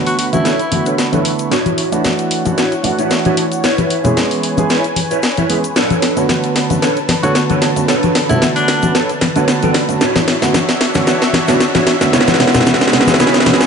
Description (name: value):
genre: nu-disco, nu disco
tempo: 113 BPM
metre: 4/4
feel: swing 54% on 16ths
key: unclear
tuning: A4 = 440 Hz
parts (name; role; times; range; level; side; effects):
- dark baby grand piano; accompaniment; 0.0-13.7 s; C#3 to C#5; -18 LUFS; right 2 dB; tape echo
- lush unison pad; sustained chords; 0.0-13.7 s; D3 to C#6; -21 LUFS; equal; chorus
- raspy tenor saxophone; melody; 0.1-0.9, 7.2-8.9 s; D4 to F#4; -21 LUFS; left 2 dB; tape echo
- house drum kit; drums; 0.1-13.7 s; hi-hat, snare drum; -16 LUFS; left 1 dB; small room reverb
- egg shaker and congas; percussion; 0.1-13.7 s; none; -21 LUFS; left 4 dB; none
- mellow electric guitar; riff; 0.4-13.7 s; D4 to D5; -19 LUFS; right 1 dB; ensemble chorus, low-pass filter, tape echo
room: moderate plate reverb, RT60 1.8 s, small room ambience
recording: nothing above 10.5 kHz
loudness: -12 LUFS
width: side -6 dB against mid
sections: 0.0-13.7 A section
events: build-up 0.0-13.7; drum fill 0.0-13.7; filter sweep on clean electric guitar 0.0-13.7; filter sweep on analog synth pad 0.0-13.7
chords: 0.0 Bm9; 1.5 Dmaj9; 3.6 C#m7; 5.8 Dmaj9; 12.1 C#m7